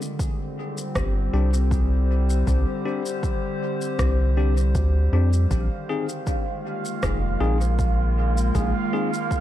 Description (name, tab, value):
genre	ambient dub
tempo	79 BPM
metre	4/4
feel	swing 53% on 16ths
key	C minor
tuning	A4 = 439 Hz
part	warbly tape-like pad	sustained chords	0.0-9.4 s	D3 to C5	-28 LUFS	left 1 dB	chorus, built-in reverb
part	electronic shaker and rim click	drums	0.0-9.4 s	none	-34 LUFS	equal	overdrive, dub echo
part	electronic kick drum	drums	0.2-9.4 s	none	-27 LUFS	equal	overdrive
part	round analog bass	bass	1.0-8.7 s	F1 to F2	-20 LUFS	equal	none
part	bell-like tine electric piano	stabs	1.3-9.1 s	C4 to Ab4	-32 LUFS	left 6 dB	dub echo
part	bubbling stepped-filter texture	texture	5.6-9.4 s	F5	-31 LUFS	right 9 dB	chorus, built-in reverb
room	digital ambience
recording	echo-heavy mix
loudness	-20 LUFS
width	side -12 dB against mid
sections	0.0-9.4 A section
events	none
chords	0.0 Csus2; 5.5 Bb7sus4